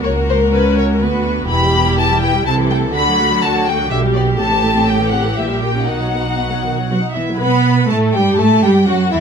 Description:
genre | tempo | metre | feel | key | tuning
quick classical-period movement for string orchestra | 123 BPM | 3/4 | rubato | unclear | A4 = 440 Hz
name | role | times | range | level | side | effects
rich chamber violin section | melody | 0.0-9.2 s | G3 to B5 | -19 LUFS | left 4 dB | none
warm chamber violin section | second line | 0.0-9.2 s | D#4 to B5 | -21 LUFS | left 1 dB | none
rich chamber viola section | accompaniment | 0.0-9.2 s | C3 to B4 | -20 LUFS | left 1 dB | none
rich chamber cello section | bass | 0.0-9.2 s | C#2 to B3 | -19 LUFS | right 2 dB | none
warm chamber double bass section | bass | 0.0-9.2 s | E1 to B2 | -20 LUFS | right 3 dB | none
room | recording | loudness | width
light reverb | none | -13 LUFS | side -6 dB against mid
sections
0.0-7.4 A section; 7.4-9.2 A section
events
none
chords
0.0 F#/C#; 1.0 Bm/D; 1.5 Em; 2.5 Am/C; 2.9 D; 3.9 G/B; 4.4 Am; 5.4 A#dim7; 5.9 B; 7.4 Gadd9

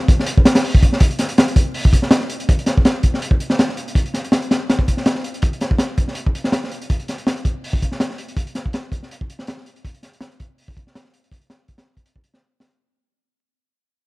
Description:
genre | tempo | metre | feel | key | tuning
drum and bass | 163 BPM | 4/4 | swing 54% on 16ths | none | none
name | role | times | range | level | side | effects
crunchy breakbeat drum kit | drums | 0.1-12.8 s | hi-hat, kick drum, snare drum | -16 LUFS | equal | none
room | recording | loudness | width
little or no reverb | dark, warm production, vinyl crackle | -16 LUFS | side -23 dB against mid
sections
0.0-1.0 A section; 1.0-12.8 B section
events
drop 0.0-1.0; fade-out 1.0-12.8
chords
none

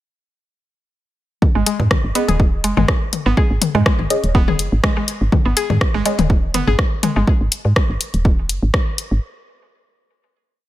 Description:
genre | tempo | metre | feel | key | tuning
minimal techno | 123 BPM | 4/4 | swing 54% on 16ths | G# minor | A4 = 439 Hz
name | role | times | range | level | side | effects
electronic kick drum | drums | 1.4-8.8 s | none | -17 LUFS | equal | overdrive, studio reverb
electronic toms | percussion | 1.4-7.1 s | none | -22 LUFS | left 6 dB | studio reverb
mallet-like synth pluck | riff | 1.6-7.2 s | G#3 to G#4 | -22 LUFS | equal | chorus, sidechain pumping, ping-pong delay
woody FM bass | bass | 1.6-9.2 s | D#1 to G#2 | -18 LUFS | equal | sidechain pumping
punchy analog drum machine | drums | 1.7-9.1 s | hi-hat, rim click | -22 LUFS | left 1 dB | overdrive, studio reverb
filtered dub chord stab | stabs | 2.2-6.2 s | C#4 to D#5 | -23 LUFS | equal | phaser, tape echo
room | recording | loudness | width
digital ambience | none | -15 LUFS | side -14 dB against mid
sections
1.4-9.2 groove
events
none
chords
1.4 G#5

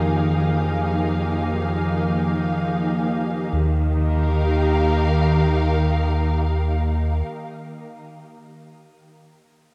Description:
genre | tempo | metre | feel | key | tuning
ambient | free time | none | none | Eb major | A4 = 440 Hz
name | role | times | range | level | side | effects
dark studio string section | sustained chords | 0.0-7.2 s | Eb3 to F5 | -26 LUFS | equal | shimmer reverb
round analog bass | bass | 0.0-7.2 s | Eb2 to F2 | -25 LUFS | equal | none
organ-like drone | drone | 0.0-7.3 s | Eb3 to Bb3 | -28 LUFS | equal | ensemble chorus, built-in reverb
room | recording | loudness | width
wet cathedral reverb, RT60 5.2 s | in a vast, echoing space | -21 LUFS | mono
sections
0.0-3.5 A section; 3.5-6.5 B section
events
none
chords
0.0 Fm7; 3.5 Ebadd9

